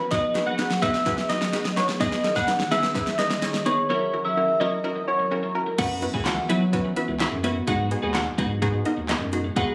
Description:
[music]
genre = dance-pop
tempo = 127 BPM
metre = 4/4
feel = straight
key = unclear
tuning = A4 = 436 Hz
[part]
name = soft struck synth lead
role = melody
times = 0.0-5.8 s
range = A#4 to F#5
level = -26 LUFS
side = equal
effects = chorus, phaser, delay
[part]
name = punchy chord stab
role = accompaniment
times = 0.0-9.7 s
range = G#3 to C#5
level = -32 LUFS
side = equal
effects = chorus, sidechain pumping
[part]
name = airy breathy pad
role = sustained chords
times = 0.0-9.7 s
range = B2 to A#4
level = -36 LUFS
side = equal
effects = chorus, sidechain pumping
[part]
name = twelve-string electric guitar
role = riff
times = 0.0-9.7 s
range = F#3 to B4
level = -33 LUFS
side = equal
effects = lush chorus
[part]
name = pop drum kit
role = drums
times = 0.1-9.7 s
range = crash cymbal, handclaps, hi-hat, kick drum, snare drum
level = -30 LUFS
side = equal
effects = none
[part]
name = hollow square pluck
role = melody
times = 5.8-9.7 s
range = D#4 to G#5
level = -32 LUFS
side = equal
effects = chorus, delay
[part]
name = saturated sub bass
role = bass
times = 5.8-9.7 s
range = C#2 to F#3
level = -30 LUFS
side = equal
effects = sidechain pumping
[sound]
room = light reverb, digital ambience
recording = recorded on a phone in the room, studio ambience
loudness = -24 LUFS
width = mono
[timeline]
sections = 0.0-5.8 A section; 5.8-9.7 B section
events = build-up 0.0-5.8; drum fill 0.0-3.9; drop 5.8-9.7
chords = 0.1 G#m7; 2.0 Emaj7; 3.9 F#7; 5.8 F#7sus4; 7.7 G#m7

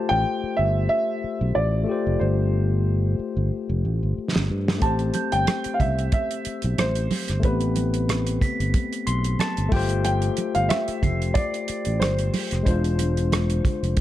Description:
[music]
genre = lush 1970s-style soul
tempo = 92 BPM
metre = 4/4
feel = swing 54% on 16ths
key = A minor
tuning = A4 = 440 Hz
[part]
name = dark baby grand piano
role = melody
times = 0.0-14.0 s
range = B4 to A5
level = -27 LUFS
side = right 1 dB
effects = none
[part]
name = barky tine electric piano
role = accompaniment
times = 0.0-14.0 s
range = G#3 to C6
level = -27 LUFS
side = left 5 dB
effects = none
[part]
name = fingered electric bass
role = bass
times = 0.1-14.0 s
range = E1 to G2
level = -24 LUFS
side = equal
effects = none
[part]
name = damped 70s drum kit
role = drums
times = 4.4-14.0 s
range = hi-hat, kick drum, rim click, snare drum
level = -25 LUFS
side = right 1 dB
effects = none
[part]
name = glockenspiel with rubber mallets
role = texture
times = 5.1-12.9 s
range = G6 to C7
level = -36 LUFS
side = right 5 dB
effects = stereo widening
[part]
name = congas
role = percussion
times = 5.2-14.0 s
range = none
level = -29 LUFS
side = right 4 dB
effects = none
[sound]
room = little or no reverb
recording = dark, warm production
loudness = -21 LUFS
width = side -13 dB against mid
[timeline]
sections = 0.0-14.0 A section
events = drum fill 3.5-4.8; tine electric piano fill 8.7-10.1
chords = 0.0 G9sus4; 4.8 Am9; 9.7 G9sus4; 12.7 E7b9b13

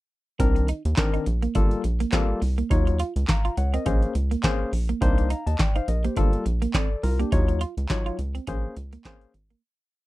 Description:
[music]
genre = early-eighties boogie funk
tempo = 104 BPM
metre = 4/4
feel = swing 56% on 16ths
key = unclear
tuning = A4 = 438 Hz
[part]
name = barky tine electric piano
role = accompaniment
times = 0.4-9.3 s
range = Eb3 to Bb5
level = -28 LUFS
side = left 4 dB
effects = medium stereo tremolo
[part]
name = clean electric guitar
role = riff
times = 0.4-9.6 s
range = Bb3 to F4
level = -31 LUFS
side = right 7 dB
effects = wide subtle chorus
[part]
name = rubbery square bass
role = bass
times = 0.4-9.6 s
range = G1 to Eb2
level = -24 LUFS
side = equal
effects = none
[part]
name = booming analog drum machine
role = drums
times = 0.4-9.6 s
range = handclaps, hi-hat, kick drum, snare drum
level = -23 LUFS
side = equal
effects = none
[sound]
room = little or no reverb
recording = dark, warm production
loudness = -22 LUFS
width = side -18 dB against mid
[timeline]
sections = 0.4-9.6 verse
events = fade-out 7.3-9.6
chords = 0.4 Cm9; 1.6 Gm9; 2.7 Ebm9; 3.9 Bbm9; 5.0 Cm9; 6.2 Gm9; 7.3 Ebm9; 8.5 Bbm9

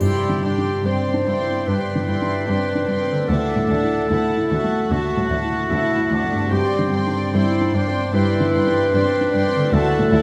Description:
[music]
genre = cinematic, emotional film score for orchestra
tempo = 74 BPM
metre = 4/4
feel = rubato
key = unclear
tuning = A4 = 440 Hz
[part]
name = warm studio violin section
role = melody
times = 0.0-10.2 s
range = A5 to C6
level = -34 LUFS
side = equal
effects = none
[part]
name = mellow clarinet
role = second line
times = 0.0-10.2 s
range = F#4 to C5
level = -25 LUFS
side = equal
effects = none
[part]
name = warm studio violin section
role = second line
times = 0.0-10.2 s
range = D5 to G5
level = -31 LUFS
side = equal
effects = none
[part]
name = felt-muted upright piano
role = accompaniment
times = 0.0-10.2 s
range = D2 to E4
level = -26 LUFS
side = equal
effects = none
[part]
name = rich studio viola section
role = accompaniment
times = 0.0-10.2 s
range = C4 to F#4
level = -29 LUFS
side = equal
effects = none
[part]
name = concert harp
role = arpeggios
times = 0.0-10.2 s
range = G2 to G4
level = -30 LUFS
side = equal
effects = none
[part]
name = warm studio cello section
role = bass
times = 0.0-10.2 s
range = D2 to G2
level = -27 LUFS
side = equal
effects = none
[part]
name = triangle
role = percussion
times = 0.0-1.6 s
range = none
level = -50 LUFS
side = equal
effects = none
[sound]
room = wet recital hall reverb, RT60 1.8 s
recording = none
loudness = -20 LUFS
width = mono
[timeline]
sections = 0.0-10.2 A section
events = none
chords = 0.0 Gsus4; 3.3 Dadd9; 6.5 Gsus4; 9.7 Dadd9

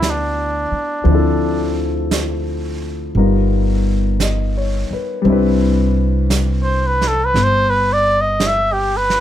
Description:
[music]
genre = jazz ballad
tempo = 57 BPM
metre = 4/4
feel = swing 68% on 8ths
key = unclear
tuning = A4 = 440 Hz
[part]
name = trumpet with cup mute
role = melody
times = 0.0-9.2 s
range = D4 to E5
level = -16 LUFS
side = equal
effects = none
[part]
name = warm concert grand piano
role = accompaniment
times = 0.0-9.2 s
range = F3 to D#5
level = -20 LUFS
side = left 4 dB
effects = none
[part]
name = upright bass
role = bass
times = 0.0-9.2 s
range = G1 to D2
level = -18 LUFS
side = right 1 dB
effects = none
[part]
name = vintage brush drum kit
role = drums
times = 0.0-9.2 s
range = brushed snare drum, hi-hat, snare drum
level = -25 LUFS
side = right 4 dB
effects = none
[sound]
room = little or no reverb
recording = close, detailed microphones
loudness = -14 LUFS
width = side -11 dB against mid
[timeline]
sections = 0.0-9.2 A section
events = muted trumpet solo 0.0-9.2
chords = 0.0 Bm7; 1.1 Dm9; 3.2 G7alt; 5.3 Cmaj9

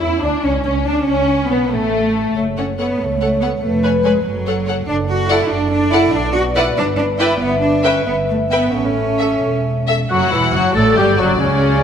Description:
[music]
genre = quick classical-period movement for symphony orchestra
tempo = 94 BPM (dotted quarters)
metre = 6/8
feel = rubato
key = D major from 4.9 s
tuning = A4 = 441 Hz
[part]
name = rich studio violin section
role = melody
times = 0.0-11.8 s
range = A3 to G#5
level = -26 LUFS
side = left 6 dB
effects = none
[part]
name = rich studio violin section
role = second line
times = 0.0-11.8 s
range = A3 to F#5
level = -24 LUFS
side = left 3 dB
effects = none
[part]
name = warm chamber viola section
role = accompaniment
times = 0.0-11.8 s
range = C#3 to B4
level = -23 LUFS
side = right 1 dB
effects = none
[part]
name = mellow French horn section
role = sustained chords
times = 0.0-11.8 s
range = C#3 to E5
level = -21 LUFS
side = left 3 dB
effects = none
[part]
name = dark studio double bass section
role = bass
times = 0.0-11.8 s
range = E1 to E2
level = -22 LUFS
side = right 3 dB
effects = none
[part]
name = rich studio cello section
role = bass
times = 0.0-11.8 s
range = C#2 to F#4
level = -19 LUFS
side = right 2 dB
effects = none
[part]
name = mellow clarinet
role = second line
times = 10.1-11.8 s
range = C#4 to A4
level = -19 LUFS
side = left 2 dB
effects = none
[part]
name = warm oboe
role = second line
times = 10.1-11.8 s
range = C#5 to A5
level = -22 LUFS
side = right 1 dB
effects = none
[sound]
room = wet scoring stage reverb, RT60 2.0 s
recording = none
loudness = -14 LUFS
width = side -8 dB against mid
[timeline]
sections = 0.0-10.1 A section; 10.1-11.8 B section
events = none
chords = 0.0 C#m; 1.1 Bsus2; 1.7 N.C.; 2.4 F#m; 3.6 C#7/E#; 4.3 F#m; 4.9 D/F#; 6.1 Bm; 6.8 G; 7.4 Em/G; 8.7 A; 10.1 Esus2; 10.8 D

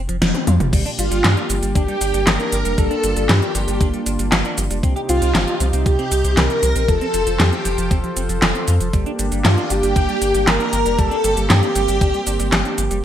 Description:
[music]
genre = synthwave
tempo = 117 BPM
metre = 4/4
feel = straight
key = G minor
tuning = A4 = 441 Hz
[part]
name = round analog bass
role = bass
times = 0.0-13.0 s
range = F1 to G2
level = -20 LUFS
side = equal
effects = sidechain pumping
[part]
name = semi-hollow electric guitar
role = riff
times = 0.1-13.0 s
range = F3 to C5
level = -29 LUFS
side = right 2 dB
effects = wide subtle chorus, digital delay
[part]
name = pop drum kit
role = drums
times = 0.1-13.0 s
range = cabasa, crash cymbal, handclaps, hi-hat, snare drum, toms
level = -20 LUFS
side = equal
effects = small room ambience, gated reverb
[part]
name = warm analog pad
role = sustained chords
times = 0.7-13.0 s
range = C3 to C5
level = -26 LUFS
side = right 1 dB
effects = chorus, sidechain pumping
[part]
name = electronic kick drum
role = drums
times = 0.7-12.1 s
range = none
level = -18 LUFS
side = equal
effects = small room ambience
[part]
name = warm velvety synth lead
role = melody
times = 1.0-12.7 s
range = F4 to Bb4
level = -22 LUFS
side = equal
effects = chorus, cassette tape, digital delay
[part]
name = string machine, violins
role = second line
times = 1.0-12.7 s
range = F4 to Bb4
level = -27 LUFS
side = left 1 dB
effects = ensemble chorus, cassette tape, digital delay
[sound]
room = light reverb, digital ambience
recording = bright 1980s-style digital production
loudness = -15 LUFS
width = side -10 dB against mid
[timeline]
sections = 0.7-13.0 A section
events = band accent 0.2; drum fill 0.3-0.7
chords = 0.0 F5; 0.7 Gm; 4.8 Cm; 6.9 F; 8.9 Gm

